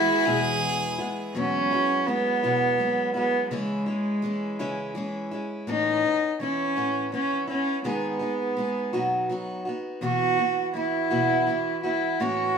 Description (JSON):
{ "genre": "acoustic folk duo or small band", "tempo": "55 BPM (dotted quarters)", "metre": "6/8", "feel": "straight", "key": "E major", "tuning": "A4 = 440 Hz", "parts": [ { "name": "warm cello", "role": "melody", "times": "0.0-12.6 s", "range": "G#3 to F#4", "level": "-24 LUFS", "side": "right 1 dB", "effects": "none" }, { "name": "clear fiddle", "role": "second line", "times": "0.0-1.3 s", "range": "F#4 to G#4", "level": "-28 LUFS", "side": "right 1 dB", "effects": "none" }, { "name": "picked steel-string acoustic guitar", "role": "accompaniment", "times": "0.0-12.6 s", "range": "E2 to G#4", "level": "-29 LUFS", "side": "left 1 dB", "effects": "none" }, { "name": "dark chamber string section", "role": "sustained chords", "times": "0.0-1.3 s", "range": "E3 to G#4", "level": "-36 LUFS", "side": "left 3 dB", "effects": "none" } ], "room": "wet studio reverb, RT60 0.8 s", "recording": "minimal, uncompressed stereo recording", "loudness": "-23 LUFS", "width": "side -6 dB against mid", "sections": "0.0-1.4 A section; 1.4-12.6 B section", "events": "none", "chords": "0.0 E; 1.4 Eadd9; 3.5 C#m; 5.7 Aadd9; 7.9 G#m; 8.9 B; 10.0 Esus2" }